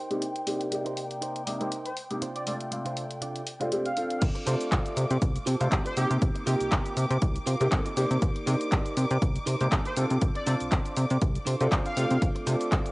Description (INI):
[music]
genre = filtered disco house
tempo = 120 BPM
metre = 4/4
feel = swing 55% on 16ths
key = unclear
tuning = A4 = 440 Hz
[part]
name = clear studio violin section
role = sustained chords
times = 0.0-12.9 s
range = G5 to D6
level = -39 LUFS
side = equal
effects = vintage 12-bit sampler grit, sidechain pumping, low-pass filter, cassette tape
[part]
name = direct-recorded clean electric guitar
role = riff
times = 0.0-12.9 s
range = C3 to F5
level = -38 LUFS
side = right 4 dB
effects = sidechain pumping, low-pass filter, cassette tape
[part]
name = clear baby grand piano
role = accompaniment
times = 0.1-12.9 s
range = C3 to D5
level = -32 LUFS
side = equal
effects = phaser, sidechain pumping, low-pass filter, cassette tape
[part]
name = punchy analog drum machine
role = drums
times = 0.1-12.9 s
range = crash cymbal, handclaps, hi-hat, shaker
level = -34 LUFS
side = equal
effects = sidechain pumping on hats, cassette tape, sidechain pumping on cymbals, sidechain pumping on perc
[part]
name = analog synth brass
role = melody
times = 1.9-12.3 s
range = G4 to F5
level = -35 LUFS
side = right 1 dB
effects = chorus, cassette tape, sidechain pumping, low-pass filter, tape echo
[part]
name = plucky analog bass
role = bass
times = 4.2-12.8 s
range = C2 to C3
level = -27 LUFS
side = equal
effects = sidechain pumping, low-pass filter
[part]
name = electronic kick drum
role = drums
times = 4.2-12.8 s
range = none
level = -26 LUFS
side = equal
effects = cassette tape
[sound]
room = light reverb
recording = home recording on cassette, nothing above 10.6 kHz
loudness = -25 LUFS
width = side -23 dB against mid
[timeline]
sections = 0.0-4.2 A section; 4.2-12.9 B section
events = clean electric guitar fill 0.0; filter sweep 0.0-4.2; drop 4.2-12.9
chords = 0.0 Cm7; 2.2 Dm7/C; 4.2 G9sus4/C; 10.2 Dm7/C; 12.2 G9sus4/C